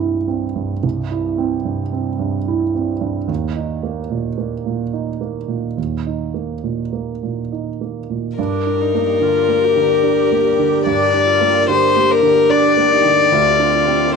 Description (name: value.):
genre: neoclassical piano and strings.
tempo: 73 BPM.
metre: 3/4.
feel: rubato.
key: G minor.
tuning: A4 = 439 Hz.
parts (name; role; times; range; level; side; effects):
dark grand piano; accompaniment; 0.0-14.2 s; C2 to E4; -20 LUFS; right 7 dB; none.
rich violin; melody; 8.4-14.1 s; Bb4 to D5; -14 LUFS; left 8 dB; none.
dark viola; accompaniment; 8.4-14.2 s; D4 to G4; -23 LUFS; right 9 dB; none.
soft additive organ-like pad; sustained chords; 8.8-14.2 s; C4 to D5; -23 LUFS; right 1 dB; ensemble chorus, built-in reverb.
room: light reverb, small room ambience.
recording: 1960s-style stereo with parts hard left and right, nothing above 11.0 kHz.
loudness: -15 LUFS.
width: side -5 dB against mid.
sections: 0.0-8.4 A section; 8.4-14.2 A section.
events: none.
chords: 0.0 C; 3.3 Eb5; 8.4 Gm; 13.3 Dm7.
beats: 0.00 | 0.84 1.66 2.48 | 3.29 4.10 4.93 | 5.77 6.63 7.51 | 8.38 9.21 10.04 | 10.87 11.69 12.51 | 13.32 14.15.